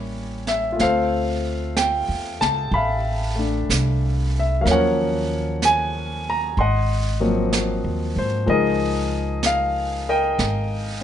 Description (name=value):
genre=jazz ballad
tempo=63 BPM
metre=4/4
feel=swing 68% on 8ths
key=unclear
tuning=A4 = 440 Hz
part: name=warm grand piano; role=accompaniment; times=0.0-11.0 s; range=F3 to C6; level=-21 LUFS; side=left 1 dB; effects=none
part: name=upright bass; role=bass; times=0.0-11.0 s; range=Ab1 to Ab2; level=-24 LUFS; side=right 1 dB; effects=none
part: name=jazz brush drum kit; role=drums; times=0.5-11.0 s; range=brushed snare drum, hi-hat, snare drum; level=-29 LUFS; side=right 4 dB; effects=none
room=light reverb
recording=nothing above 10.5 kHz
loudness=-19 LUFS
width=side -10 dB against mid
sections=0.0-11.0 A section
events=none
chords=0.0 A7b9; 0.8 Dm9; 4.6 Ebm7; 6.6 Ab13; 8.5 Db69